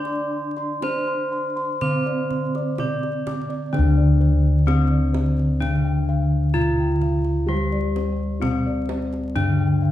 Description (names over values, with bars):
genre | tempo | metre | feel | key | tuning
Javanese gamelan | 64 BPM | 4/4 | straight | unclear | A4 = 441 Hz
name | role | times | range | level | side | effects
gamelan-type bronze metallophone | melody | 0.0-9.9 s | C4-25c to D5 | -26 LUFS | equal | none
gamelan-type bronze metallophone | accompaniment | 0.0-9.9 s | D3 to D4 | -24 LUFS | equal | none
gamelan-type bossed gongs | arpeggios | 0.0-9.9 s | C5-25c to D6 | -32 LUFS | left 3 dB | none
gamelan-type bronze metallophone | arpeggios | 0.0-3.7 s | D5 to D6 | -36 LUFS | right 4 dB | none
gamelan-type bossed gongs | bass | 0.0-9.9 s | D2 to D5 | -23 LUFS | left 1 dB | none
kendang | percussion | 0.1-9.6 s | none | -33 LUFS | right 1 dB | none
room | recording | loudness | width
wet recital hall reverb, RT60 1.3 s | recorded in a church or concert hall, vinyl crackle | -19 LUFS | side -13 dB against mid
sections
0.0-3.7 A section; 3.7-9.9 B section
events
none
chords
none